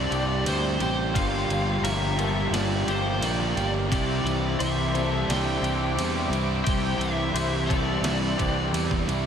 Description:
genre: rock, shoegaze and dream pop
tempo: 87 BPM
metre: 4/4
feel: straight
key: unclear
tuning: A4 = 438 Hz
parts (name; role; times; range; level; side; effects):
- lead guitar through a small cranked amp; melody; 0.0-8.7 s; C5 to G5; -31 LUFS; equal; overdrive, analog delay
- warm analog pad; sustained chords; 0.0-9.3 s; F4 to D6; -33 LUFS; right 1 dB; chorus
- twangy electric guitar; arpeggios; 0.0-9.1 s; F4 to C5; -34 LUFS; left 5 dB; ensemble chorus, analog delay
- crunchy overdriven guitar; riff; 0.0-9.3 s; G2 to E4; -32 LUFS; left 1 dB; none
- overdriven semi-hollow guitar; riff; 0.0-9.3 s; G2 to G4; -32 LUFS; right 7 dB; reverse reverb
- thick fuzz guitar; riff; 0.0-9.3 s; G2 to G4; -32 LUFS; left 7 dB; distortion, wide subtle chorus
- fuzz fingered electric bass; bass; 0.0-9.3 s; G1 to E2; -28 LUFS; equal; overdrive
- detuned 8-bit digital drum machine; drums; 0.1-9.2 s; kick drum, ride cymbal, snare drum; -32 LUFS; right 1 dB; none
room: wet cathedral reverb, RT60 6.8 s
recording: dreamy mix soaked in reverb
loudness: -22 LUFS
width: side -8 dB against mid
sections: 0.0-9.3 A section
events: none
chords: 0.0 Csus2; 1.2 Gm7; 3.9 Cadd9

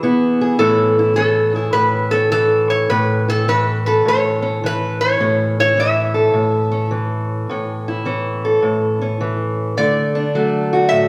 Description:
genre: acoustic country blues, solo or duo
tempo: 105 BPM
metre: 4/4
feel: swing 65% on 8ths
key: A major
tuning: A4 = 438 Hz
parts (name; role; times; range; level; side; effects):
- fingerpicked steel-string acoustic guitar; accompaniment; 0.0-11.1 s; A2 to A4; -20 LUFS; equal; none
- metal-body resonator slide guitar; melody; 0.6-11.1 s; A4 to E5; -19 LUFS; equal; none
room: wet recital hall reverb, RT60 1.5 s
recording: recorded in a church or concert hall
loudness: -17 LUFS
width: mono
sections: 0.6-11.1 A section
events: none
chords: 0.0 E; 0.6 A; 9.8 D

